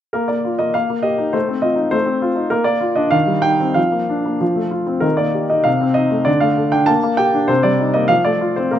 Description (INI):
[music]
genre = classical-period piano sonatina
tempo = 92-102 BPM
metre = 2/4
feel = rubato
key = Bb major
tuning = A4 = 440 Hz
[part]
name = clear baby grand piano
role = solo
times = 0.1-8.8 s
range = C3 to A5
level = -14 LUFS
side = equal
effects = none
[sound]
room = moderate recital hall reverb, RT60 1.5 s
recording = close, detailed microphones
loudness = -14 LUFS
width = side -10 dB against mid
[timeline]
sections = 0.1-8.8 A section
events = none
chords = 0.1 Bb; 0.7 Eb/Bb; 1.4 F7/A; 2.5 Bb; 3.1 Cm/Eb; 3.8 Bb/F; 4.4 F; 5.0 Eb; 5.7 Adim/C; 6.3 Dm; 6.9 Gm/Bb; 7.5 Cm7; 8.1 F